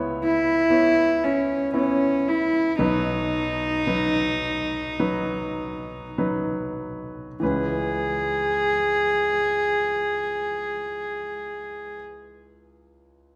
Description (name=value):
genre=acoustic folk-pop ballad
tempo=47-60 BPM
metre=4/4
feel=straight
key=C# minor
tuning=A4 = 440 Hz
part: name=warm grand piano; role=accompaniment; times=0.0-13.4 s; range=B1 to C#5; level=-30 LUFS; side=equal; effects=none
part: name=warm cello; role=melody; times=0.2-12.0 s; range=C#4 to G#4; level=-25 LUFS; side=equal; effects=none
room=moderate concert hall reverb, RT60 1.9 s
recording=none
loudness=-24 LUFS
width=mono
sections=0.0-7.4 A section; 7.4-12.4 B section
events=slowing down 0.0-7.4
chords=0.0 C#m7; 2.8 B; 7.4 C#m7